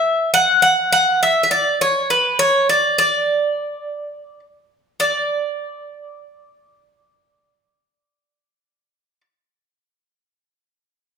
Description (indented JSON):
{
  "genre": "greek folk",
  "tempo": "206 BPM (eighths)",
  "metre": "7/8",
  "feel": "straight",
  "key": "D major",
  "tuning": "A4 = 440 Hz",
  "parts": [
    { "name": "Greek bouzouki", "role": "solo", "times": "0.0-9.2 s", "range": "B4 to F#5", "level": "-15 LUFS", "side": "equal", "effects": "none" }
  ],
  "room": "wet large studio reverb, RT60 1.1 s",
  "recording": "band playing live in one room",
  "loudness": "-14 LUFS",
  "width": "side -6 dB against mid",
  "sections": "0.0-5.0 A section; 5.0-9.1 B section",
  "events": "none",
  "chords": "none",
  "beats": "0.05 0.34 0.63 | 0.93 1.22 1.51 1.80 2.09 2.38 2.68 | 2.97 3.26 3.55 3.84 4.13 4.43 4.72 | 5.01 5.30 5.59 5.88 6.17 6.46 6.76 | 7.05 7.34 7.63 7.92 8.21 8.50 8.79"
}